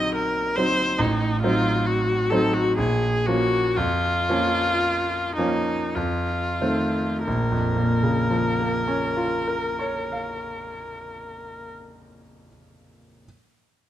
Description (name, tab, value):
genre	classical, romantic duo for viola and grand piano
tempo	44-72 BPM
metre	3/4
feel	rubato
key	Bb minor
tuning	A4 = 440 Hz
part	clear viola	melody	0.0-11.7 s	Eb4 to Eb5	-24 LUFS	left 1 dB	none
part	bright grand piano	accompaniment	0.0-13.3 s	A1 to F5	-24 LUFS	right 1 dB	none
room	moderate scoring stage reverb, RT60 1.6 s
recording	close, detailed microphones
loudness	-20 LUFS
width	side -12 dB against mid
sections	0.0-7.3 A section; 7.3-11.0 B section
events	slowing down 0.0-7.3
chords	0.0 Cm7b5/Bb; 1.0 Adim7; 2.8 Bbm; 3.8 Bbm/F; 6.0 F7; 7.3 Bbm